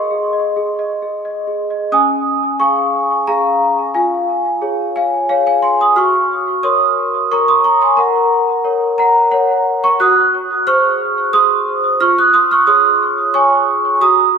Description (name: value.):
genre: classical, lullaby for celesta.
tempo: 89 BPM.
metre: 3/4.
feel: straight.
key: Db major.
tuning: A4 = 440 Hz.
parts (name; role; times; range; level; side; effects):
large celesta; solo; 0.0-14.4 s; Db4 to Gb6; -12 LUFS; right 1 dB; analog chorus, ping-pong delay.
room: wet lush hall reverb, RT60 1.9 s, small room ambience.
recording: dreamy mix soaked in reverb.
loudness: -12 LUFS.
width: side -6 dB against mid.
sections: 0.0-1.9 A section; 1.9-14.4 B section.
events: none.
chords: 0.0 Ab; 1.9 Db; 4.0 Db/F; 6.0 Gb; 8.0 Gb/Bb; 10.0 Ab7/Gb; 12.0 Db/F.